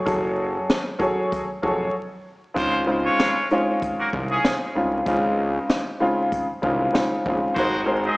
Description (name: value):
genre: hip hop, boom-bap hip-hop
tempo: 96 BPM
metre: 4/4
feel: swing 56% on 16ths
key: Db major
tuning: A4 = 442 Hz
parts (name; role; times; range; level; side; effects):
- warm upright piano; accompaniment; 0.0-8.2 s; Db3 to Db5; -22 LUFS; equal; cassette tape, high-pass filter, low-pass filter
- fat analog bass; bass; 0.1-8.1 s; F1 to Db2; -28 LUFS; equal; none
- jazz brush drum kit; drums; 0.1-7.7 s; hi-hat, kick drum, snare drum; -26 LUFS; equal; none
- muted trumpet section; stabs; 2.6-8.2 s; Ab3 to Eb5; -24 LUFS; equal; high-pass filter, low-pass filter, tape echo
room: light reverb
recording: played on a big sound system in a bare room, stone room reverb, vinyl crackle, small speaker sound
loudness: -20 LUFS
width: side -24 dB against mid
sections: 0.0-8.2 A section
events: break 1.9-2.6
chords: 0.0 Gbmadd9; 2.6 Dbmaj7; 7.6 Ab7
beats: | 0.07 0.69 1.31 1.94 | 2.56 3.19 3.81 4.44 | 5.07 5.69 6.32 6.94 | 7.57